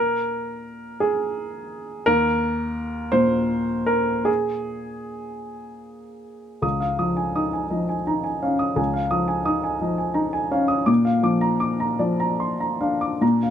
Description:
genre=neoclassical minimalist piano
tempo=48-58 BPM (dotted quarters)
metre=6/8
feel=rubato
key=Db major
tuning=A4 = 441 Hz
part: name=warm upright piano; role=solo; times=0.0-13.5 s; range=Db2 to Eb6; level=-21 LUFS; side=equal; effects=none
room=light reverb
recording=none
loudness=-20 LUFS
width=side -9 dB against mid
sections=0.0-6.6 A section; 6.6-13.5 B section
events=none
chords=0.0 Eb5; 6.6 Dbadd9; 10.9 Bb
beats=1.02 | 2.07 3.14 | 4.28 5.45 | 6.63 7.72 | 8.78 9.82 | 10.88 12.00 | 13.21

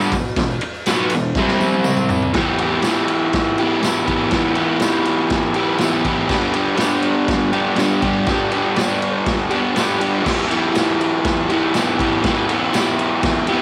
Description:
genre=garage rock duo or trio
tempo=121 BPM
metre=4/4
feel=straight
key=E minor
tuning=A4 = 438 Hz
part: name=raw garage guitar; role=riff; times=0.0-13.6 s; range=E2 to G4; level=-19 LUFS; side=equal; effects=overdrive, cassette tape
part: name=tambourine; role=percussion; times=0.0-12.9 s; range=none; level=-38 LUFS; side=equal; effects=none
part: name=raw garage drum kit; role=drums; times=0.1-13.6 s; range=crash cymbal, kick drum, ride cymbal, snare drum, toms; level=-25 LUFS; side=equal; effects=none
room=moderate spring reverb, RT60 2.1 s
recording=home recording on cassette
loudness=-18 LUFS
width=mono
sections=0.0-2.4 A section; 2.4-13.6 B section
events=drum fill 1.4-2.4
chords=0.0 Em; 1.4 C5; 2.4 Em; 6.3 G; 10.3 Em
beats=| 0.38 0.87 1.37 1.86 | 2.35 2.85 3.34 3.84 | 4.33 4.82 5.32 5.81 | 6.31 6.80 7.30 7.79 | 8.29 8.78 9.28 9.77 | 10.27 10.76 11.25 11.75 | 12.24 12.74 13.23

